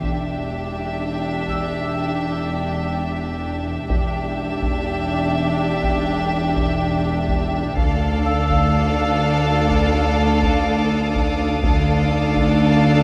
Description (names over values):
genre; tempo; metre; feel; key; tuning
cinematic, suspense film score; 62 BPM; 4/4; straight; unclear; A4 = 440 Hz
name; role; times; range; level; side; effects
warm chamber violin section; melody; 0.0-13.0 s; E5 to F5; -30 LUFS; equal; none
warm chamber violin section; second line; 0.0-13.0 s; G4 to A4; -29 LUFS; equal; none
warm chamber viola section; accompaniment; 0.0-13.0 s; D4; -27 LUFS; equal; none
dark chamber cello section; bass; 0.0-13.0 s; D2 to E2; -27 LUFS; equal; none
rich chamber double bass section; bass; 0.0-13.0 s; E1 to D2; -26 LUFS; equal; none
solo taiko drums; drums; 0.0-13.0 s; none; -28 LUFS; equal; none
vibraphone with medium hard mallets; texture; 0.0-13.0 s; F5 to E6; -32 LUFS; equal; none
warm chamber violin section; texture; 7.8-13.0 s; D6 to D#6; -36 LUFS; equal; none
room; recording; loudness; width
moderate scoring stage reverb, RT60 1.4 s; none; -20 LUFS; mono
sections
0.0-13.0 A section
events
none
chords
0.0 Em7; 7.8 Dm